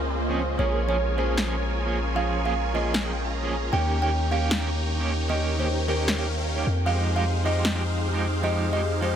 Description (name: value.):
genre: future bass.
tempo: 153 BPM.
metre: 4/4.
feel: half-time.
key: Bb dorian.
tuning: A4 = 440 Hz.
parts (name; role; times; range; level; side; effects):
kalimba; melody; 0.0-9.2 s; Bb4 to Bb5; -31 LUFS; right 2 dB; ping-pong delay.
airy breathy pad; sustained chords; 0.0-9.2 s; Db3 to G5; -37 LUFS; left 2 dB; chorus.
supersaw chords; riff; 0.0-9.2 s; Db4 to Bb5; -29 LUFS; right 1 dB; phaser, low-pass filter.
long sustained 808-style bass; bass; 0.0-9.2 s; Bb1 to F2; -26 LUFS; left 1 dB; none.
swell; sound effects; 0.0-0.6 s; none; -36 LUFS; equal; none.
clean electric guitar; accompaniment; 0.3-9.2 s; Eb3 to Ab4; -31 LUFS; right 4 dB; tremolo, tape echo.
electronic snare drum; drums; 1.4-7.7 s; none; -31 LUFS; left 1 dB; none.
room: light reverb, digital ambience.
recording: none.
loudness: -22 LUFS.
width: side -9 dB against mid.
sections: 0.0-9.2 A section.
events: swell 0.0-0.6; filter sweep on supersaw synth 0.0-9.2.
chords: 0.0 Dbmaj7; 0.6 Bbm7; 3.7 Eb7; 6.7 Fm9.